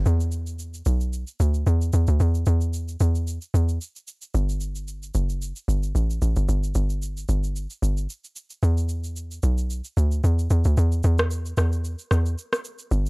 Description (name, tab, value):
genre	amapiano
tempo	112 BPM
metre	4/4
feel	swing 55% on 16ths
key	unclear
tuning	A4 = 441 Hz
part	tight log drum bass	bass	0.0-13.1 s	F#1 to E2	-21 LUFS	equal	none
part	electronic shaker and rim click	drums	0.1-13.1 s	none	-32 LUFS	right 1 dB	none
room	little or no reverb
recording	dry, gritty hardware recording, transformer saturation, cassette tape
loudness	-21 LUFS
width	side -34 dB against mid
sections	0.1-13.1 A section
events	none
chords	none